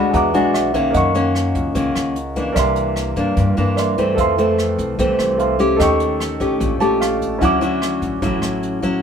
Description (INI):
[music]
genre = bossa nova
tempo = 148 BPM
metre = 4/4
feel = straight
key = unclear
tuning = A4 = 438 Hz
[part]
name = nylon-string guitar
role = accompaniment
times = 0.0-9.0 s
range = F2 to G4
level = -18 LUFS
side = left 1 dB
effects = none
[part]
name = warm grand piano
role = accompaniment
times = 0.0-9.0 s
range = C#4 to D6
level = -21 LUFS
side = right 2 dB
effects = none
[part]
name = upright bass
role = bass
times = 0.0-9.0 s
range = A1 to G2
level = -24 LUFS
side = equal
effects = none
[part]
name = jazz brush drum kit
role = drums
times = 0.1-8.9 s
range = hi-hat, kick drum, rim click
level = -26 LUFS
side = equal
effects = none
[sound]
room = moderate studio reverb, RT60 0.5 s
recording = band playing live in one room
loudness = -15 LUFS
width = side -7 dB against mid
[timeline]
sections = 0.0-9.0 A section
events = grand piano fill 0.0-0.9, 6.6-7.4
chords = 0.1 E9; 0.9 F#6; 2.6 C9; 4.2 Fmaj7; 5.8 Eb7#11; 7.4 Dmaj9